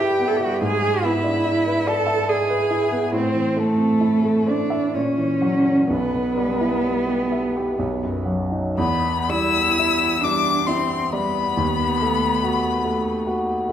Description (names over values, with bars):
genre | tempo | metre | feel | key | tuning
classical, slow romantic movement for piano trio | 57-73 BPM | 3/4 | rubato | unclear | A4 = 439 Hz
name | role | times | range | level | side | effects
dark violin | melody | 0.0-13.7 s | A4 to E6 | -24 LUFS | left 7 dB | none
warm cello | second line | 0.0-13.7 s | A3 to A4 | -22 LUFS | right 3 dB | none
warm baby grand piano | accompaniment | 0.0-13.7 s | B1 to E5 | -23 LUFS | equal | none
room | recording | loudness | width
wet recital hall reverb, RT60 1.7 s | none | -18 LUFS | side -10 dB against mid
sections
0.0-8.8 A section; 8.8-13.7 B section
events
none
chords
0.0 Em/G; 0.6 E7/G#; 3.1 Am; 4.9 F#7/A#; 5.9 Em/B; 7.8 B; 8.8 Em; 11.6 B7/D#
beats
| 0.63 1.47 2.30 | 3.15 4.03 4.95 | 5.89 6.84 7.78 | 8.76 9.76 10.67 | 11.57 12.43 13.27